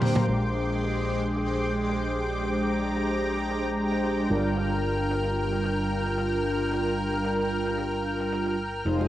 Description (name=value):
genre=nu-disco, nu disco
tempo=112 BPM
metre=4/4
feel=swing 55% on 16ths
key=unclear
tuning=A4 = 440 Hz
part: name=mellow synth brass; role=accompaniment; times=0.0-9.1 s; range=D3 to C5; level=-27 LUFS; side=equal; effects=chorus, cassette tape, analog delay
part: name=lush unison pad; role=sustained chords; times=0.0-9.1 s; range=Ab3 to F6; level=-30 LUFS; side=equal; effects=chorus, cassette tape
part: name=tight funk drum kit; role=drums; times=0.0-9.1 s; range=hi-hat, toms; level=-32 LUFS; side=left 1 dB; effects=low-pass filter on hats, cassette tape, low-pass filter on toms, low-pass filter on snare, low-pass filter on room
part: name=congas and bongos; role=percussion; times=0.0-0.3, 9.0-9.1 s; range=none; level=-33 LUFS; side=right 7 dB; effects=none
part: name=picked electric bass with an envelope filter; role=bass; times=0.3-9.1 s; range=F1 to Bb1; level=-32 LUFS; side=equal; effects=none
room=moderate studio reverb, RT60 0.5 s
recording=home recording on cassette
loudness=-24 LUFS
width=side -13 dB against mid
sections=0.3-9.1 A section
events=drum fill 0.0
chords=0.3 Bb13; 4.3 Gm7